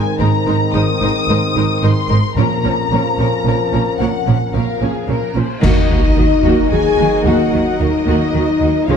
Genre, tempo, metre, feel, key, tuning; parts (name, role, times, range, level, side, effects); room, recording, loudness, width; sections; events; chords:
cinematic, epic orchestral film score; 111 BPM; 3/4; straight; Eb dorian; A4 = 440 Hz
dark symphonic violin section; melody; 0.0-9.0 s; Eb5 to Eb6; -23 LUFS; left 6 dB
clear French horn section; sustained chords; 0.0-9.0 s; C4 to Bb4; -20 LUFS; left 5 dB
clear trombone section; sustained chords; 0.0-9.0 s; F2 to Eb4; -24 LUFS; right 3 dB
warm studio violin section; second line; 0.2-9.0 s; Ab4 to Ab5; -26 LUFS; left 4 dB
warm symphonic viola section; accompaniment; 0.2-9.0 s; F3 to Ab4; -22 LUFS; right 2 dB
rich symphonic cello section; bass; 0.2-9.0 s; Ab2 to Eb3; -21 LUFS; right 3 dB
warm symphonic double bass section; bass; 0.2-9.0 s; Ab1 to Eb2; -20 LUFS; right 3 dB
cymbal swell, clash cymbals and concert bass drum; percussion; 2.4-6.7 s; -20 LUFS; equal
timpani; percussion; 2.4-3.1, 5.6-6.4 s; Bb2 to Eb3; -25 LUFS; equal
rich symphonic string section; sustained chords; 5.6-9.0 s; Bb3 to Eb5; -26 LUFS; left 1 dB
sub drop; sound effects; 5.7-7.3 s; -24 LUFS; left 1 dB
moderate scoring stage reverb, RT60 1.6 s; dark, warm production; -13 LUFS; side -7 dB against mid
0.0-5.6 A section; 5.6-9.0 A section
band accent 5.6-6.2; impact 5.6-7.3
0.0 Abadd9; 2.4 Bbm; 5.6 Ebm